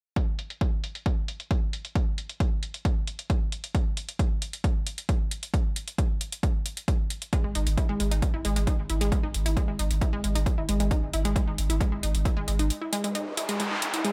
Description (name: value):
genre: driving peak-time techno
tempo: 134 BPM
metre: 4/4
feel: straight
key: unclear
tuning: A4 = 435 Hz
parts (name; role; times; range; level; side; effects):
- electronic hi-hat; drums; 0.2-14.1 s; none; -36 LUFS; equal; sidechain pumping on hats, low-pass filter on hats, small room reverb
- electronic kick drum; drums; 0.2-12.3 s; none; -29 LUFS; equal; small room reverb
- unison pluck; riff; 7.3-14.1 s; G#3 to E4; -33 LUFS; equal; tube saturation, sidechain pumping, dub echo
- saturated sub bass; bass; 7.4-12.7 s; G#1; -30 LUFS; equal; overdrive, sidechain pumping, low-pass filter
- noise sweep; sound effects; 13.1-14.1 s; none; -34 LUFS; equal; none
room: digital ambience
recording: none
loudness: -28 LUFS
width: mono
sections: 0.2-14.1 A section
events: kick drops out 12.7-14.1; noise sweep 13.1-14.1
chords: 0.2 G#5